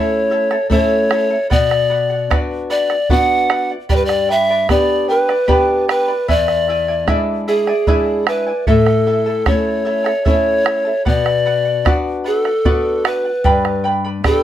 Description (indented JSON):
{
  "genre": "andean folk, Andean ensemble",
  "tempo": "75 BPM",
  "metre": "3/4",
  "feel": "straight",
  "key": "B minor",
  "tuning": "A4 = 440 Hz",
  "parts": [
    { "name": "breathy hollow pan flute", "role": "melody", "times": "0.0-14.4 s", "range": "G#4 to F#5", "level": "-16 LUFS", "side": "left 1 dB", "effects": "none" },
    { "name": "charango", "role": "accompaniment", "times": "0.0-14.4 s", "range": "E4 to B5", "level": "-22 LUFS", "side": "right 3 dB", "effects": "none" },
    { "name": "flamenco guitar", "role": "accompaniment", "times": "0.0-14.4 s", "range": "E2 to G4", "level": "-20 LUFS", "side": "left 3 dB", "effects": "none" },
    { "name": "bombo", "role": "percussion", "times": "0.3-14.4 s", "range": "none", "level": "-18 LUFS", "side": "right 2 dB", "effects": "none" }
  ],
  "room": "light reverb",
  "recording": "none",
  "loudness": "-13 LUFS",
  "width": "side -11 dB against mid",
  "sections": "0.0-14.4 A section",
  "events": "none",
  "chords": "0.0 A; 1.5 Bm; 3.9 G; 6.3 E7; 8.7 A; 11.1 Bm; 13.4 G"
}